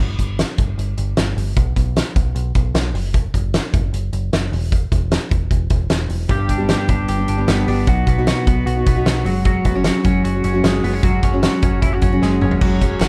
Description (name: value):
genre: jangly indie pop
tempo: 152 BPM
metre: 4/4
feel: straight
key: unclear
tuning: A4 = 440 Hz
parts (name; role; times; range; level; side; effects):
- deep dub picked electric bass; bass; 0.0-13.1 s; E1 to B1; -23 LUFS; equal; none
- loose indie drum kit; drums; 0.2-13.1 s; crash cymbal, hi-hat, kick drum, snare drum, toms; -21 LUFS; equal; none
- picked steel-string acoustic guitar; accompaniment; 6.3-13.1 s; G2 to G4; -24 LUFS; equal; none
- twelve-string electric guitar; arpeggios; 6.3-13.1 s; G2 to G4; -23 LUFS; equal; none
- group handclap; percussion; 13.0-13.1 s; none; -31 LUFS; equal; none
room: light reverb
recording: dark, warm production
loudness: -18 LUFS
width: mono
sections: 0.0-12.6 A section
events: drum fill 12.2-12.6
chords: 0.0 N.C.; 6.3 G; 7.9 B; 9.3 F#sus2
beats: 0.38 0.78 1.17 | 1.56 1.96 2.35 2.75 | 3.14 3.54 3.93 4.33 | 4.72 5.12 5.51 5.91 | 6.30 6.70 7.09 7.49 | 7.88 8.28 8.67 9.06 | 9.46 9.85 10.25 10.64 | 11.04 11.43 11.83 12.22 | 12.62 13.01